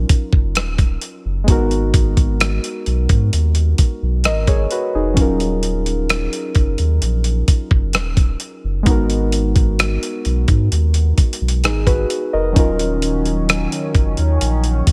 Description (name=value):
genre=contemporary R&B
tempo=65 BPM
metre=4/4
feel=straight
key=Eb minor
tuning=A4 = 440 Hz
part: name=muted felt-like synth keys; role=accompaniment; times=0.0-14.9 s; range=Gb3 to Eb5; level=-24 LUFS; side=equal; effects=chorus
part: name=warm sub bass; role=bass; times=0.0-14.8 s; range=Eb1 to Ab2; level=-20 LUFS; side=equal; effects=none
part: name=dusty soul sampler-style drum kit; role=drums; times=0.1-14.9 s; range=hi-hat, kick drum, rim click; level=-18 LUFS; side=equal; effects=none
part: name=chorused pulse-width pad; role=sustained chords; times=12.6-14.9 s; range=Eb3 to Db4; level=-27 LUFS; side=equal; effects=sidechain pumping
room=digital ambience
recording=none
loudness=-17 LUFS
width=mono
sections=0.0-14.9 A section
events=none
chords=0.0 Ebm7; 1.5 Abm7; 5.2 Ebm7; 8.9 Abm7; 12.6 Ebm7